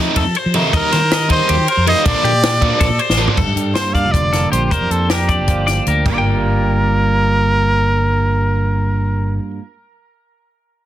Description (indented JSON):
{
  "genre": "math rock and midwest emo",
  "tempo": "314 BPM (eighths)",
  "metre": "7/8",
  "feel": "straight",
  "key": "G minor",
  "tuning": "A4 = 443 Hz",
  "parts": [
    { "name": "biting overdriven guitar", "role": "riff", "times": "0.0-3.4 s", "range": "C3 to Eb4", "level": "-18 LUFS", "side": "right 1 dB", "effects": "none" },
    { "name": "fingered electric bass", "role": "bass", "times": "0.0-9.4 s", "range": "F1 to F3", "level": "-18 LUFS", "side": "equal", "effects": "none" },
    { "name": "clean electric guitar", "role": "arpeggios", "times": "0.2-9.5 s", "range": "G4 to G5", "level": "-21 LUFS", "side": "left 6 dB", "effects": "analog chorus" },
    { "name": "compact cocktail drum kit", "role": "drums", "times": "0.2-6.1 s", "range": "china cymbal, crash cymbal, hi-hat, kick drum, ride cymbal, snare drum, toms", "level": "-19 LUFS", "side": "equal", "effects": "none" },
    { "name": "bright trumpet", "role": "melody", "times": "0.8-9.4 s", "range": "G4 to F5", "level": "-19 LUFS", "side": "right 1 dB", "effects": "digital delay" },
    { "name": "twelve-string electric guitar", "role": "accompaniment", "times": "3.4-9.6 s", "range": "G2 to G4", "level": "-22 LUFS", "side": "right 4 dB", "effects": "vibrato effect" }
  ],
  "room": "light reverb",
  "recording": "dense, heavily limited modern master",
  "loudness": "-13 LUFS",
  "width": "side -12 dB against mid",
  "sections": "0.0-3.4 A section; 3.4-6.1 B section; 6.1-8.7 C section",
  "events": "drum fill 3.1",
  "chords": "0.0 F7; 0.7 Eb6; 2.1 Bbmaj7; 3.4 Gm11; 4.7 Bb6/F; 6.1 Gm7"
}